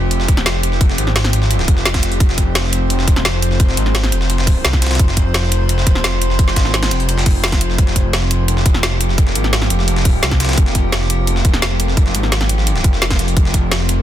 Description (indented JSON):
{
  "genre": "dark technical drum and bass",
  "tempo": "172 BPM",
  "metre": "4/4",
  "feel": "straight",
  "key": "F minor",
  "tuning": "A4 = 440 Hz",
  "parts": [
    { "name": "metallic inharmonic drone", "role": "sustained chords", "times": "0.0-14.0 s", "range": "F3 to C5", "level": "-23 LUFS", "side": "left 1 dB", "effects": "chorus, built-in reverb, sidechain pumping" },
    { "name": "wide detuned saw bass", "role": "bass", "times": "0.0-14.0 s", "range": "Eb1 to C2", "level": "-17 LUFS", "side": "equal", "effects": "chorus, overdrive" },
    { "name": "breakbeat sampler-style drum kit", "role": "drums", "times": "0.1-14.0 s", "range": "hi-hat, snare drum", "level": "-25 LUFS", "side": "equal", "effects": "high-pass filter on hats, high-pass filter on snare, high-pass filter on room" },
    { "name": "drum and bass drum kit", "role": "drums", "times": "0.1-14.0 s", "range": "hi-hat, snare drum", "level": "-20 LUFS", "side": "equal", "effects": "soft clipping on snare" },
    { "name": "electronic kick drum", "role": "drums", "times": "0.3-13.6 s", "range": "none", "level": "-13 LUFS", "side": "equal", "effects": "none" }
  ],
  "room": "little or no reverb",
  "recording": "dense, heavily limited modern master",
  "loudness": "-13 LUFS",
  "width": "side -12 dB against mid",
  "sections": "0.0-14.0 A section",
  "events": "none",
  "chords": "0.0 Fm"
}